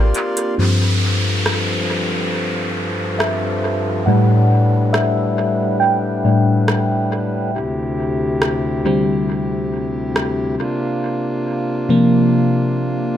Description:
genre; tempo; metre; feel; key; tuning
contemporary R&B; 69 BPM; 4/4; straight; G dorian; A4 = 440 Hz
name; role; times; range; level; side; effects
FM electric piano; accompaniment; 0.0-13.2 s; G2 to G5; -17 LUFS; left 1 dB; chorus, phaser, low-pass filter
hand-pumped harmonium; sustained chords; 0.0-13.2 s; D2 to C6; -21 LUFS; left 1 dB; low-pass filter
booming analog drum machine; drums; 0.1-10.4 s; hi-hat, rim click; -23 LUFS; right 1 dB; dub echo
downlifter; sound effects; 0.6-7.5 s; none; -26 LUFS; equal; none
room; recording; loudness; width
light reverb; echo-heavy mix; -15 LUFS; side -10 dB against mid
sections
0.6-13.2 A section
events
FM electric piano solo 0.6-13.2; filter sweep 0.6-13.2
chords
0.0 C9sus4; 0.6 G9sus4; 4.1 A9sus4; 7.5 D9sus4; 10.6 C9sus4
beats
| 0.59 1.46 2.33 3.20 | 4.07 4.93 5.80 6.67 | 7.54 8.41 9.28 10.15 | 11.02 11.89 12.76

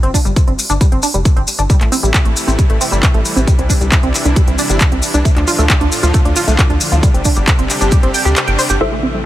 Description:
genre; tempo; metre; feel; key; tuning
uplifting trance; 135 BPM; 4/4; straight; unclear; A4 = 441 Hz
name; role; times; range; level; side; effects
tight sequenced synth; arpeggios; 0.0-9.2 s; G3 to G5; -19 LUFS; right 2 dB; chorus, sidechain pumping, digital delay
tight sequencer bass; bass; 0.0-9.3 s; F1 to D2; -16 LUFS; equal; sidechain pumping
techno drum kit; drums; 0.0-9.0 s; handclaps, hi-hat; -19 LUFS; equal; sidechain pumping on hats, low-pass filter on hats, low-pass filter on snare
electronic kick drum; drums; 0.1-8.0 s; none; -12 LUFS; equal; none
maracas; percussion; 0.1-8.8 s; none; -21 LUFS; left 2 dB; none
supersaw pad; sustained chords; 1.7-9.3 s; A2 to G4; -20 LUFS; equal; sidechain pumping, low-pass filter
wide unison pluck; melody; 8.8-9.1 s; E4 to E5; -19 LUFS; equal; phaser, sidechain pumping, digital delay
warm concert grand piano; second line; 8.8-9.1 s; E5; -25 LUFS; left 4 dB; sidechain pumping, low-pass filter, digital delay
room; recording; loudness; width
little or no reverb; none; -11 LUFS; side -14 dB against mid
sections
0.0-8.8 A section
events
kick drops out 8.4-8.8; band accent 8.4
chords
0.0 Gsus4; 1.7 Am7; 3.5 Cadd9; 5.3 Dm; 7.0 Gsus4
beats
0.36 0.81 1.25 | 1.70 2.14 2.59 3.03 | 3.48 3.92 4.37 4.81 | 5.25 5.70 6.14 6.59 | 7.03 7.48 7.92 8.37 | 8.81 9.25

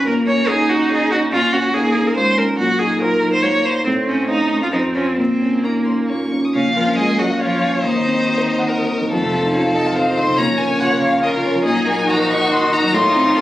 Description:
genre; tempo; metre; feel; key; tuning
quick classical-period movement for piano quintet; 141 BPM; 3/4; rubato; Bb minor; A4 = 441 Hz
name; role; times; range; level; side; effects
rich cello; second line; 0.0-13.4 s; Db3 to Eb4; -24 LUFS; right 2 dB; none
dark concert grand piano; accompaniment; 0.0-13.4 s; Eb2 to Gb5; -19 LUFS; left 1 dB; none
rich viola; accompaniment; 0.0-13.4 s; A3 to Db5; -20 LUFS; right 1 dB; none
rich violin; melody; 0.5-13.4 s; Db5 to Eb6; -22 LUFS; left 2 dB; none
warm violin; second line; 0.5-13.4 s; F4 to F5; -22 LUFS; left 1 dB; none
room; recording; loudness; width
moderate large studio reverb, RT60 1.3 s; recorded on a phone in the room, studio ambience, compression; -14 LUFS; side -14 dB against mid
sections
0.0-6.5 A section; 6.5-13.4 B section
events
none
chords
0.1 Gb/Bb; 1.3 Bbm; 3.9 F/A; 4.7 F; 5.2 Bbm; 7.8 Cdim/Eb; 9.1 F7; 10.4 Bbm; 11.7 Ebm/Bb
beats
| 0.06 0.48 0.90 | 1.32 1.74 2.16 | 2.59 3.01 3.44 | 3.86 4.29 4.73 | 5.18 5.64 6.09 | 6.54 6.97 7.40 | 7.84 8.27 8.69 | 9.12 9.55 9.97 | 10.39 10.81 11.24 | 11.66 12.08 12.51 | 12.94 13.36

